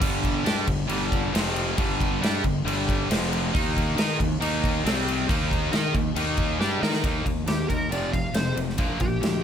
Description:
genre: hard rock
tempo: 137 BPM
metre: 4/4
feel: straight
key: unclear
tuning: A4 = 435 Hz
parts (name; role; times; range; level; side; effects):
- distorted electric guitar; riff; 0.0-9.4 s; F2 to Eb5; -30 LUFS; left 11 dB; overdrive
- distorted electric guitar; riff; 0.0-9.4 s; F2 to Eb5; -30 LUFS; right 13 dB; distortion
- distorted electric guitar; riff; 0.0-7.0 s; F2 to Eb5; -32 LUFS; equal; overdrive
- fuzz fingered electric bass; bass; 0.0-9.4 s; F1 to Eb3; -30 LUFS; equal; overdrive
- big rock drum kit; drums; 0.0-9.3 s; crash cymbal, kick drum, ride cymbal, snare drum; -26 LUFS; equal; none
- high-gain lead guitar; melody; 7.5-9.4 s; G4 to F5; -30 LUFS; left 1 dB; distortion, digital delay
room: light reverb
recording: none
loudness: -22 LUFS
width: side -8 dB against mid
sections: 0.0-7.0 A section; 7.0-9.4 B section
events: drum fill 6.6-7.0; lead electric guitar solo 7.0-9.4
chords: 0.0 G5; 1.3 F5; 1.8 G5; 3.1 F5; 3.5 Eb5; 4.8 C5; 5.3 Eb5; 7.9 F5; 8.8 Bb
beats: | 0.01 0.45 0.89 1.33 | 1.77 2.21 2.65 3.09 | 3.53 3.96 4.40 4.84 | 5.28 5.72 6.15 6.59 | 7.03 7.47 7.91 8.35 | 8.78 9.22

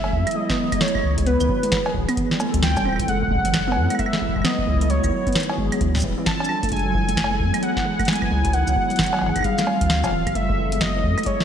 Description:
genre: IDM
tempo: 132 BPM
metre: 4/4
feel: swing 62% on 16ths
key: F# dorian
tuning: A4 = 441 Hz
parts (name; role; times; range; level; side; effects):
- warm velvety synth lead; melody; 0.0-11.4 s; B4 to A5; -25 LUFS; equal; chorus, digital delay
- hollow soft pad; sustained chords; 0.0-11.4 s; F#3 to A4; -28 LUFS; left 1 dB; ensemble chorus
- warbly dusty pluck; arpeggios; 0.0-11.4 s; D#3 to D4; -26 LUFS; right 3 dB; chorus, ping-pong delay
- warm sub bass; bass; 0.0-11.2 s; D1 to F#2; -23 LUFS; equal; none
- electro analog drum machine; drums; 0.0-11.4 s; cabasa, claves, cowbell, hi-hat, snare drum; -25 LUFS; equal; studio reverb
- electronic kick drum; drums; 0.1-11.4 s; none; -28 LUFS; equal; studio reverb
room: moderate lush hall reverb, RT60 1.6 s, digital ambience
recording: bright 1980s-style digital production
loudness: -18 LUFS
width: side -8 dB against mid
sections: 0.0-11.4 A section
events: none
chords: 0.0 F#m11; 1.3 C#m11; 2.2 Dm11; 3.1 F#m11; 4.9 C#m11; 5.8 Dm11; 6.7 F#m11; 8.5 C#m11; 9.4 Dm11; 10.4 F#m11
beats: 0.35 0.81 | 1.26 1.72 2.17 2.63 | 3.08 3.54 3.99 4.44 | 4.90 5.35 5.81 6.26 | 6.72 7.17 7.63 8.08 | 8.54 8.99 9.44 9.90 | 10.35 10.81 11.26

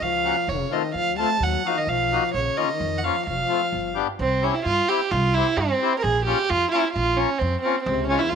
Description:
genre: klezmer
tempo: 130 BPM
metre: 2/4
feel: straight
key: F phrygian dominant, C phrygian dominant from 4.2 s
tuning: A4 = 439 Hz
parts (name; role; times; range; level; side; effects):
- warm violin; melody; 0.0-8.4 s; C4 to A5; -22 LUFS; right 4 dB; none
- mellow trombone; second line; 0.0-4.0, 7.9-8.4 s; E2 to A3; -29 LUFS; left 12 dB; none
- upright bass; bass; 0.0-8.4 s; F1 to G2; -27 LUFS; right 1 dB; none
- accordion; accompaniment; 0.2-8.2 s; Ab3 to G4; -28 LUFS; left 12 dB; none
room: light reverb, studio reverb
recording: 1960s-style stereo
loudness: -20 LUFS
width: side -7 dB against mid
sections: 0.0-4.2 A section; 4.2-8.4 B section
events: speeding up 0.0-8.4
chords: 0.5 F; 1.4 Ebm; 2.3 Bbm; 3.3 F; 3.7 G7; 4.2 C; 6.0 Bbm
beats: 0.01 | 0.48 0.94 | 1.41 1.88 | 2.35 2.81 | 3.27 3.74 | 4.20 4.66 | 5.12 5.58 | 6.04 6.50 | 6.96 7.41 | 7.87 8.32

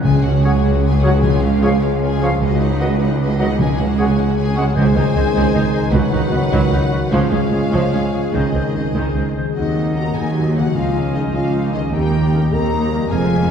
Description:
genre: cinematic, heroic adventure film score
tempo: 101 BPM (dotted quarters)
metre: 6/8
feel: straight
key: Db major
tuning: A4 = 441 Hz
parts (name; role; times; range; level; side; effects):
- rich studio violin section; melody; 0.0-13.5 s; Eb5 to Bb5; -30 LUFS; left 5 dB; none
- warm oboe; second line; 0.0-13.5 s; Cb5 to F5; -32 LUFS; equal; none
- warm symphonic viola section; accompaniment; 0.0-13.5 s; Eb3 to G4; -27 LUFS; right 2 dB; none
- concert harp; arpeggios; 0.0-13.5 s; Db3 to Cb6; -23 LUFS; left 4 dB; none
- rich studio cello section; bass; 0.0-13.5 s; Db2 to F2; -20 LUFS; right 2 dB; none
- rich studio double bass section; bass; 0.0-13.5 s; F1 to Eb2; -21 LUFS; right 2 dB; none
- timpani; percussion; 0.0-5.3, 8.3-11.3 s; Db3; -23 LUFS; left 2 dB; none
- clear symphonic violin section; second line; 0.1-13.5 s; F4 to Bb5; -31 LUFS; left 2 dB; none
- mellow clarinet; second line; 0.4-13.5 s; G3 to Cb5; -30 LUFS; left 2 dB; none
- mellow French horn section; sustained chords; 0.4-13.5 s; Ab3 to Bb4; -27 LUFS; left 2 dB; none
- warm trombone section; sustained chords; 0.4-13.0 s; Db3 to Bb3; -26 LUFS; right 2 dB; none
- silver concert flute; second line; 0.5-13.5 s; Eb5 to Bb5; -31 LUFS; left 1 dB; none
room: wet scoring stage reverb, RT60 2.0 s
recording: heard from further back in the room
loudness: -14 LUFS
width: side -7 dB against mid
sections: 0.0-9.6 A section; 9.6-13.5 B section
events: build-up 0.0-9.6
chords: 0.0 Gbsus2/Db; 1.2 Db; 2.4 Cb/Db; 3.6 Gbsus2/Db; 4.8 Ab/Db; 5.9 Cb/Db; 7.1 Db; 8.3 Ab/Db; 9.6 Ebm; 10.7 Dbadd9; 11.9 Eb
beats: | 0.05 0.64 | 1.24 1.83 | 2.42 3.01 | 3.60 4.19 | 4.77 5.35 | 5.94 6.53 | 7.12 7.72 | 8.33 8.94 | 9.55 10.15 | 10.75 11.34 | 11.93 12.52 | 13.11

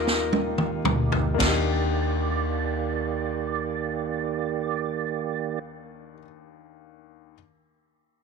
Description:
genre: slow gospel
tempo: 35 BPM (dotted quarters)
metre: 6/8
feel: straight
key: Eb major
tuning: A4 = 441 Hz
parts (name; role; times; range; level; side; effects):
- clear grand piano; accompaniment; 0.0-7.4 s; Eb2 to G4; -32 LUFS; left 14 dB; none
- percussive tonewheel organ; sustained chords; 0.0-5.6 s; Eb3 to D5; -29 LUFS; right 13 dB; slow rotary speaker, chorus vibrato
- hollow-body short-scale fingered electric bass; bass; 0.0-6.2 s; D2 to Eb2; -30 LUFS; equal; none
- swinging big-band drum kit; drums; 0.1-1.7 s; kick drum, ride cymbal, snare drum, toms; -26 LUFS; equal; none
room: light reverb, small room ambience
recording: 1960s-style stereo with parts hard left and right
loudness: -24 LUFS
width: side -5 dB against mid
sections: 0.0-1.4 A section; 1.4-4.8 B section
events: drum fill 0.0-1.4; slowing down 0.0-1.4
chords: 0.0 Ebmaj7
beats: | 1.41 3.12

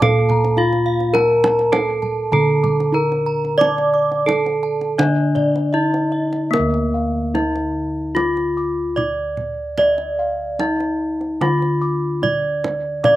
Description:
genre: Javanese gamelan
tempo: 74-106 BPM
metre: 4/4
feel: straight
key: D pelog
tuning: A4 = 440 Hz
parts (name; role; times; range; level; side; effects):
- gamelan-type bronze metallophone; melody; 0.0-13.2 s; Bb3 to D5; -18 LUFS; equal; none
- gamelan-type bossed gongs; arpeggios; 0.0-13.2 s; D5 to D6; -28 LUFS; left 3 dB; slapback echo
- gamelan-type bronze metallophone; arpeggios; 0.0-6.5, 13.0-13.2 s; D5 to D6; -27 LUFS; right 5 dB; slapback echo
- gamelan-type bossed gongs; bass; 0.0-13.2 s; D2 to D5; -21 LUFS; equal; none
- kendang; percussion; 0.0-13.2 s; none; -26 LUFS; right 3 dB; none
room: little or no reverb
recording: recorded outdoors, with no room sound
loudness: -16 LUFS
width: side -15 dB against mid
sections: 0.0-6.5 A section; 6.5-13.2 B section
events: none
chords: none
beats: 0.02 0.58 | 1.15 1.72 2.32 2.95 | 3.60 4.28 5.00 5.75 | 6.54 7.35 8.17 8.98 | 9.79 10.61 11.42 12.23 | 13.04

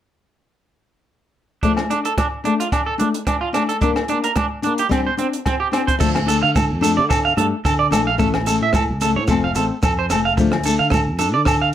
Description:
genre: highlife guitar band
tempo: 110 BPM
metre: 4/4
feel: swing 54% on 16ths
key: D minor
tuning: A4 = 441 Hz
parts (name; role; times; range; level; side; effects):
- flamenco guitar; accompaniment; 1.6-11.4 s; E3 to D4; -21 LUFS; left 5 dB; none
- electric guitar at the edge of break-up; arpeggios; 1.6-11.7 s; C4 to F5; -20 LUFS; right 4 dB; slapback echo
- compact cocktail drum kit; drums; 1.6-11.6 s; crash cymbal, hi-hat, kick drum, rim click; -23 LUFS; right 1 dB; none
- congas; percussion; 1.6-11.5 s; none; -26 LUFS; right 1 dB; none
- agogo bells; percussion; 1.8-11.6 s; none; -28 LUFS; left 5 dB; none
- fingered electric bass; bass; 6.0-11.7 s; F1 to D3; -23 LUFS; equal; none
- shekere; percussion; 6.0-11.6 s; none; -30 LUFS; left 2 dB; none
room: moderate small room ambience, RT60 0.5 s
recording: none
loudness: -16 LUFS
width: side -11 dB against mid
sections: 1.6-6.0 A section; 6.0-11.7 B section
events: none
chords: 1.6 Dm; 3.8 Gm; 4.9 Csus2; 6.0 Dm; 8.2 A; 9.3 F; 10.4 Dm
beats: | 1.64 2.19 2.73 3.28 | 3.83 4.38 4.92 5.47 | 6.01 6.56 7.11 7.65 | 8.20 8.74 9.29 9.83 | 10.38 10.92 11.47

